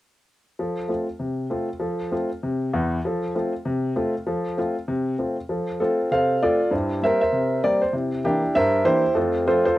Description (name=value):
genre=jazz, stride piano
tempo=196 BPM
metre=4/4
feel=swing 62% on 8ths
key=F major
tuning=A4 = 442 Hz
part: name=clear upright piano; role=solo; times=0.6-9.8 s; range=E2 to F5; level=-21 LUFS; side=equal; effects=cassette tape
room=moderate studio reverb, RT60 0.6 s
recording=home recording on cassette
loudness=-21 LUFS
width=side -16 dB against mid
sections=0.6-5.5 A section; 5.5-9.8 B section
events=none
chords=0.6 F; 6.7 C7/G; 9.1 F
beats=| 0.58 0.89 1.20 1.50 | 1.81 2.12 2.42 2.73 | 3.04 3.35 3.65 3.96 | 4.26 4.57 4.88 5.18 | 5.49 5.79 6.10 6.40 | 6.71 7.01 7.32 7.62 | 7.93 8.23 8.54 8.84 | 9.15 9.45 9.76